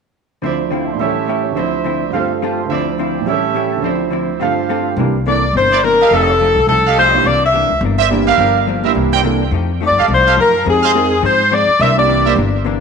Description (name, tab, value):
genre	jazz, big band swing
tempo	211 BPM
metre	4/4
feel	swing 59% on 8ths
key	C mixolydian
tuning	A4 = 440 Hz
part	vintage hollow-body jazz guitar	accompaniment	0.4-12.8 s	G2 to A4	-22 LUFS	left 12 dB	none
part	warm concert grand piano	accompaniment	0.4-12.4 s	D2 to G5	-20 LUFS	right 10 dB	none
part	clear trumpet section	stabs	0.4-12.3 s	E4 to D6	-18 LUFS	right 8 dB	tape echo
part	upright bass	bass	5.0-12.8 s	F1 to Ab2	-18 LUFS	left 1 dB	none
part	bright saxophone section	melody	5.3-7.8, 9.9-12.3 s	Ab4 to E5	-12 LUFS	left 2 dB	none
room	moderate echo chamber reverb, RT60 1.7 s, small room ambience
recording	1960s-style stereo with parts hard left and right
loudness	-12 LUFS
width	side -5 dB against mid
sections	0.4-5.0 A section; 5.0-12.8 B section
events	none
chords	0.4 Dm9; 1.0 A7; 1.6 Dm9; 2.1 G9sus4; 2.7 Dm9; 3.3 A7; 3.8 Dm9; 4.4 G9sus4; 5.0 C9; 6.1 F9; 7.3 C9; 8.4 Gm7; 9.0 C9; 9.5 F9; 10.7 Fm7; 11.8 C9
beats	| 0.42 0.71 0.99 1.28 | 1.56 1.84 2.13 2.42 | 2.70 2.98 3.27 3.55 | 3.84 4.12 4.41 4.69 | 4.98 5.26 5.55 5.83 | 6.11 6.40 6.68 6.97 | 7.25 7.54 7.82 8.10 | 8.39 8.67 8.96 9.24 | 9.52 9.81 10.09 10.38 | 10.66 10.94 11.23 11.51 | 11.80 12.08 12.37 12.65